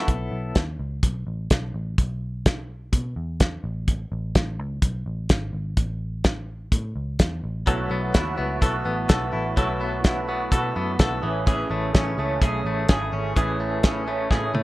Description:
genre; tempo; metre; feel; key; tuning
jangly indie pop; 126 BPM; 4/4; straight; unclear; A4 = 440 Hz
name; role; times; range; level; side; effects
electric guitar through a small old amp; accompaniment; 0.0-0.1, 7.7-14.6 s; B2 to G#4; -28 LUFS; right 5 dB; ensemble chorus
direct-recorded clean electric guitar; arpeggios; 0.0-0.6, 7.7-14.6 s; E3 to A4; -27 LUFS; left 3 dB; tremolo
vintage muted picked electric bass; bass; 0.1-14.6 s; G#1 to B2; -29 LUFS; equal; none
cloth-damped thuddy drum kit; drums; 0.1-14.6 s; hi-hat, kick drum, snare drum, toms; -20 LUFS; equal; none
room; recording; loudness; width
little or no reverb; dark, warm production; -22 LUFS; side -18 dB against mid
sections
0.1-14.6 A section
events
drum fill 14.3-14.6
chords
0.1 B7sus4; 3.6 N.C.; 7.7 B7sus4; 11.2 Amaj7

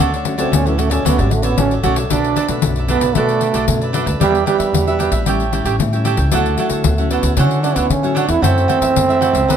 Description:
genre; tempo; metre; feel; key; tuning
samba and choro; 114 BPM; 4/4; straight; B minor; A4 = 440 Hz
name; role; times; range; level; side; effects
cavaquinho; accompaniment; 0.0-9.6 s; D4 to G5; -22 LUFS; right 6 dB; none
nylon-string guitar; accompaniment; 0.0-9.6 s; F#2 to G4; -23 LUFS; left 5 dB; none
upright bass; bass; 0.0-9.6 s; A1 to F#3; -19 LUFS; equal; none
pandeiro; percussion; 0.0-9.6 s; none; -21 LUFS; left 6 dB; none
growling trombone; second line; 0.4-9.6 s; E3 to E4; -18 LUFS; right 5 dB; none
room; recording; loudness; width
moderate studio reverb, RT60 0.8 s; none; -13 LUFS; side -8 dB against mid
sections
0.0-2.1 A section; 2.1-9.6 B section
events
trombone solo 0.0-2.1, 2.1-9.6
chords
0.0 Dmaj7; 2.1 Bm7; 4.2 Em7; 5.3 A7; 6.3 Dmaj9; 8.4 F#m7b5

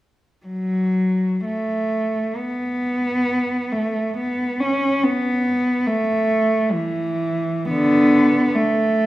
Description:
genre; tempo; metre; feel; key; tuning
classical, free, expressive piece for unaccompanied cello; 58-73 BPM; 4/4; rubato; unclear; A4 = 440 Hz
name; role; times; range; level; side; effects
dark cello; solo; 0.5-9.1 s; D3 to C#4; -18 LUFS; equal; none
room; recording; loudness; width
wet recital hall reverb, RT60 1.5 s; recorded in a church or concert hall; -18 LUFS; side -16 dB against mid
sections
0.5-9.1 A section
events
none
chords
none

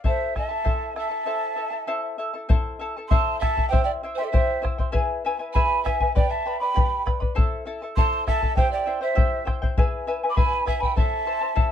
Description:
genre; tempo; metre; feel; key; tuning
andean folk, Andean ensemble; 99 BPM; 2/4; straight; A minor; A4 = 440 Hz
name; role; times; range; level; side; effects
charango; accompaniment; 0.0-11.7 s; E4 to B5; -28 LUFS; left 2 dB; none
bombo; percussion; 0.0-11.7 s; none; -22 LUFS; left 1 dB; none
breathy mellow quena; melody; 0.1-11.7 s; D5 to D6; -26 LUFS; right 1 dB; none
mellow pan flute; second line; 0.1-11.7 s; A4 to B5; -29 LUFS; right 7 dB; none
room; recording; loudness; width
light reverb; dark, warm production; -21 LUFS; side -9 dB against mid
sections
0.0-2.5 A section; 2.5-11.7 B section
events
speeding up 0.0-11.7; break 1.3-2.5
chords
0.0 Am; 3.7 C; 4.9 E; 6.1 G; 7.4 Am; 8.6 C; 9.8 E; 11.0 Am

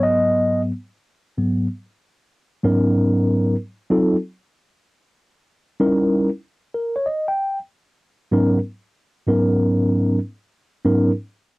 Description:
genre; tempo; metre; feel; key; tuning
hip hop; 95 BPM; 4/4; swing 66% on 16ths; G# minor; A4 = 439 Hz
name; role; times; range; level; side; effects
mellow tine electric piano; solo; 0.0-11.1 s; G#2 to G5; -17 LUFS; equal; medium stereo tremolo, cassette tape
room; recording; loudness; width
moderate booth ambience, RT60 0.2 s; home recording on cassette; -18 LUFS; side -23 dB against mid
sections
0.0-2.3 A section; 2.3-11.6 B section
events
tine electric piano solo 0.0-2.3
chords
0.0 G#m7; 2.3 G#m11; 3.6 F7b9; 4.9 D#7b9; 7.4 G#m11

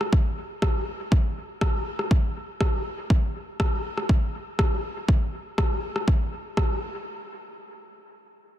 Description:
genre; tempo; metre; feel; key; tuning
techno; 121 BPM; 4/4; straight; none; none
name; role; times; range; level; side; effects
electronic rim click; drums; 0.0-6.7 s; none; -31 LUFS; left 1 dB; overdrive, dub echo
electronic kick drum; drums; 0.1-6.7 s; none; -22 LUFS; equal; overdrive
room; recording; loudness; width
little or no reverb; dense, heavily limited modern master; -23 LUFS; side -12 dB against mid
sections
0.0-7.1 A section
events
none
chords
none

